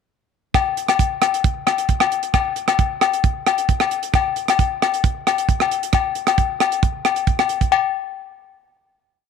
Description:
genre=highlife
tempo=134 BPM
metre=4/4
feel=straight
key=none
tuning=none
part: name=tight funk drum kit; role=drums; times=0.5-7.7 s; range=hi-hat, kick drum, rim click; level=-20 LUFS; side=right 5 dB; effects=none
part: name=agogo bells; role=percussion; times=0.5-7.8 s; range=none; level=-19 LUFS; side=left 12 dB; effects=none
room=light reverb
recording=1960s-style stereo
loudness=-17 LUFS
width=side -6 dB against mid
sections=0.5-7.7 A section; 7.7-9.3 final hit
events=none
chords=none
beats=| 0.55 1.00 1.45 1.89 | 2.34 2.79 3.24 3.69 | 4.14 4.59 5.04 5.49 | 5.93 6.38 6.83 7.27 | 7.71

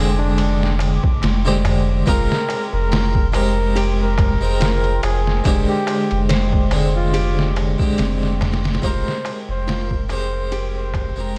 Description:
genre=trip hop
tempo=71 BPM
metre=4/4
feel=swing 55% on 16ths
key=F dorian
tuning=A4 = 441 Hz
part: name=harpsichord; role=accompaniment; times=0.0-11.4 s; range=D3 to G5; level=-25 LUFS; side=equal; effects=tremolo
part: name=warbly tape-like pad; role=sustained chords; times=0.0-11.4 s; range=Ab3 to D6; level=-33 LUFS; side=equal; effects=chorus, built-in reverb
part: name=warm sub bass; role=bass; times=0.0-11.4 s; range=F1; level=-23 LUFS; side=equal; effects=none
part: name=trumpet with bucket mute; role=melody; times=0.2-11.3 s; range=D4 to C5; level=-29 LUFS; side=equal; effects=none
part: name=darbuka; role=percussion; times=0.2-11.3 s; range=none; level=-32 LUFS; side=equal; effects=none
part: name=trip hop sampler-style drum kit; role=drums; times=0.4-11.2 s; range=hi-hat, kick drum, ride cymbal, snare drum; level=-25 LUFS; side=equal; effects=overdrive
part: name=nylon-string guitar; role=arpeggios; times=2.1-11.3 s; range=C4 to C5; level=-33 LUFS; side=equal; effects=dub echo
room=little or no reverb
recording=dark, warm production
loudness=-19 LUFS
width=mono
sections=0.0-11.4 A section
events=fade-out 6.6-11.4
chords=0.0 Fm69; 2.1 Abmaj9/F; 5.5 Fm69; 8.8 Abmaj9/F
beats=0.38 1.23 | 2.07 2.92 3.76 4.61 | 5.45 6.30 7.14 7.99 | 8.83 9.68 10.52 11.37

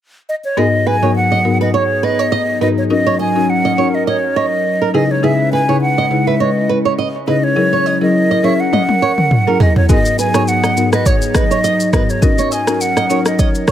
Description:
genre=afrobeats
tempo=103 BPM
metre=4/4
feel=swing 55% on 16ths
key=G# minor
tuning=A4 = 438 Hz
part: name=breathy mellow silver concert flute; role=melody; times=0.3-13.7 s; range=C#5 to G#5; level=-17 LUFS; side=equal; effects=tape echo
part: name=buzzing marimba with medium mallets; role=accompaniment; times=0.6-13.3 s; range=G#2 to B4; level=-18 LUFS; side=left 4 dB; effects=none
part: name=hollow soft pad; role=sustained chords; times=0.6-13.7 s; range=F#3 to B4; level=-20 LUFS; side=equal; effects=chorus
part: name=flamenco guitar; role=riff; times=0.6-13.7 s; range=G#4 to D#5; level=-20 LUFS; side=right 7 dB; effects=tape echo
part: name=deep house drum kit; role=drums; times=8.7-13.7 s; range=kick drum, rim click, shaker, toms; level=-14 LUFS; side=equal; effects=none
room=light reverb, studio reverb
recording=none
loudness=-12 LUFS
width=side -10 dB against mid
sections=0.6-13.7 A section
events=drum fill 8.7-9.9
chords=0.0 N.C.; 0.6 G#m7; 2.9 D#m7; 4.9 C#m7; 7.6 F#7; 9.9 G#m7; 12.2 D#m7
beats=| 0.57 1.16 1.74 2.32 | 2.90 3.49 4.07 4.65 | 5.23 5.82 6.40 6.98 | 7.56 8.15 8.73 9.31 | 9.89 10.48 11.06 11.64 | 12.22 12.81 13.39

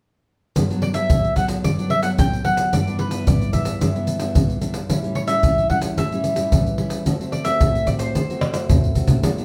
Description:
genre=samba and choro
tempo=111 BPM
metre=4/4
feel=straight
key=G major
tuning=A4 = 442 Hz
part: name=nylon-string guitar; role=accompaniment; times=0.6-9.4 s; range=G2 to F#4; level=-27 LUFS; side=equal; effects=none
part: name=maracas, surdo, pandeiro and tamborim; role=percussion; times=0.6-9.4 s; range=none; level=-22 LUFS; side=equal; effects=none
part: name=mandolin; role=melody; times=0.8-8.9 s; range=B4 to G5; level=-26 LUFS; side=equal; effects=none
room=wet studio reverb, RT60 0.6 s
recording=heard from further back in the room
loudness=-20 LUFS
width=mono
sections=0.6-9.4 A section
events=drum fill 8.4-9.2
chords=0.6 Gmaj7; 2.7 Em7/G; 4.9 A7; 7.1 D7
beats=| 0.56 1.10 1.65 2.19 | 2.73 3.27 3.81 4.35 | 4.90 5.44 5.98 6.52 | 7.07 7.61 8.15 8.69 | 9.24

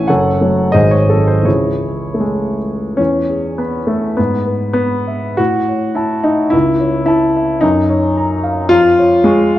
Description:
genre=classical, romantic character piece for solo piano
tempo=71-113 BPM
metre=2/4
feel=rubato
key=E major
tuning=A4 = 439 Hz
part: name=warm grand piano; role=solo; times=0.0-9.6 s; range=F#1 to Db6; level=-12 LUFS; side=equal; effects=none
room=wet recital hall reverb, RT60 1.5 s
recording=dark, warm production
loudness=-12 LUFS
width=side -14 dB against mid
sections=0.0-3.0 A section; 3.0-9.6 B section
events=none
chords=0.1 F#m; 0.7 G#7; 1.5 C#m; 3.0 E; 4.2 E/G#; 5.4 A; 6.5 A/C#; 7.6 Gbmaj7; 8.7 Db/F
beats=| 0.09 0.75 | 1.47 2.21 | 2.99 3.60 | 4.18 4.75 | 5.39 5.98 | 6.53 7.09 | 7.63 8.17 | 8.71 9.25

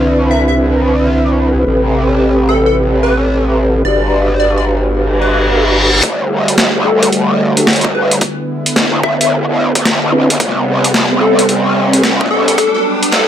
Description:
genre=glitch hop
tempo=110 BPM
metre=4/4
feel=swing 64% on 16ths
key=E minor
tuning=A4 = 444 Hz
part: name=warm analog pad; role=sustained chords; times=0.0-13.3 s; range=C3 to B4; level=-19 LUFS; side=right 1 dB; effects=chorus, sidechain pumping
part: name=mellow tonewheel organ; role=stabs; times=0.0-12.0 s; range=C4 to B4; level=-15 LUFS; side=right 1 dB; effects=chorus vibrato, stopped rotary speaker, sidechain pumping, low-pass filter, dub echo
part: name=growl bass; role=bass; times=0.0-13.3 s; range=E1 to E2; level=-15 LUFS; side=equal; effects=chorus, tube saturation, high-pass filter
part: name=plucky unison lead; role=melody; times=0.3-13.3 s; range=A4 to E5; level=-17 LUFS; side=left 1 dB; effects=phaser, dub echo
part: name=reverse cymbal and riser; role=sound effects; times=5.1-13.3 s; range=none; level=-18 LUFS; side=equal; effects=none
part: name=boom bap sampler-style drum kit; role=drums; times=6.0-13.3 s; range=hi-hat, snare drum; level=-14 LUFS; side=equal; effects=none
part: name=electronic kick drum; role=drums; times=6.0-12.7 s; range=none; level=-19 LUFS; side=equal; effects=high-pass filter on kick, high-pass filter on room
room=moderate small room reverb, RT60 0.5 s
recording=high-pass filter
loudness=-10 LUFS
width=side -10 dB against mid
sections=0.0-6.0 A section; 6.0-13.3 B section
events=reverse cymbal 5.1-6.0; build-up 6.0-13.3; riser 6.0-13.3; filter sweep on tonewheel organ 6.0-13.3; filter sweep on digital synth lead 6.0-13.3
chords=0.0 Cmaj9; 1.7 Am9; 3.9 Gmaj7; 6.0 Em11; 8.2 Cmaj9; 10.4 Am9; 12.6 Gmaj7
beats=0.03 0.58 1.12 | 1.67 2.22 2.76 3.31 | 3.85 4.40 4.94 5.49 | 6.03 6.58 7.12 7.67 | 8.22 8.76 9.31 9.85 | 10.40 10.94 11.49 12.03 | 12.58 13.12

